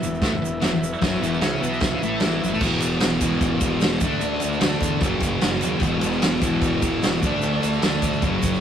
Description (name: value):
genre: garage rock duo or trio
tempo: 150 BPM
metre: 4/4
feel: straight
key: unclear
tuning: A4 = 440 Hz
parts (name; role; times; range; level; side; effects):
- overdriven combo organ; sustained chords; 0.0-2.6 s; E4 to E5; -30 LUFS; left 2 dB; none
- thick fuzz guitar; riff; 0.0-8.6 s; E2 to D4; -22 LUFS; equal; distortion
- fuzz fingered electric bass; bass; 0.0-8.6 s; E1 to E2; -30 LUFS; equal; overdrive
- tube shaker; percussion; 0.0-8.6 s; none; -38 LUFS; right 6 dB; none
- vintage drum kit; drums; 0.2-8.5 s; crash cymbal, kick drum, ride cymbal, snare drum; -24 LUFS; equal; none
room: moderate small room reverb, RT60 0.6 s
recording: rough rehearsal-room recording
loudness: -19 LUFS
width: side -9 dB against mid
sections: 0.0-2.6 A section; 2.6-8.6 B section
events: none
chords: 0.0 E5; 4.0 D5; 5.0 F#5; 5.8 E5; 7.2 D5